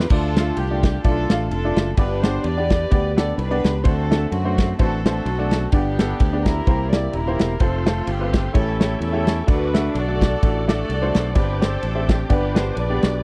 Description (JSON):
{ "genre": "uptempo gospel", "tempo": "128 BPM", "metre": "4/4", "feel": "swing 56% on 8ths", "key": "unclear", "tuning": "A4 = 440 Hz", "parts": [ { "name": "warm studio string section", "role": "melody", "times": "0.0-13.2 s", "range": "A3 to D5", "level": "-28 LUFS", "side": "equal", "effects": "none" }, { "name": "bright tonewheel organ", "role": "sustained chords", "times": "0.0-0.1, 7.6-13.2 s", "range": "A4 to D6", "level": "-36 LUFS", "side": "equal", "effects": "fast rotary speaker, chorus vibrato" }, { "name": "fingered electric bass", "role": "bass", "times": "0.0-13.2 s", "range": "Eb1 to F#2", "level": "-26 LUFS", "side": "equal", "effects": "none" }, { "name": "warm soul drum kit", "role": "drums", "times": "0.0-13.1 s", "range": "crash cymbal, kick drum, ride cymbal, snare drum", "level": "-21 LUFS", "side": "equal", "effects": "none" }, { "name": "bright baby grand piano", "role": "accompaniment", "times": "0.1-13.1 s", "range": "G2 to F5", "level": "-28 LUFS", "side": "equal", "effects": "none" } ], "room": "little or no reverb", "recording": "dry, close 1970s-style studio recording", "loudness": "-20 LUFS", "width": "mono", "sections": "0.1-13.2 A section", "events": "none", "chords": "0.1 Dm; 2.0 G; 3.9 D7; 5.7 G; 6.7 C7; 7.6 F; 8.5 A7; 9.5 D; 11.4 Gsus4; 12.3 G", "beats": "| 0.10 0.57 1.04 1.51 | 1.98 2.45 2.92 3.39 | 3.85 4.32 4.79 5.26 | 5.73 6.20 6.67 7.14 | 7.61 8.07 8.54 9.01 | 9.48 9.95 10.42 10.89 | 11.36 11.83 12.30 12.77" }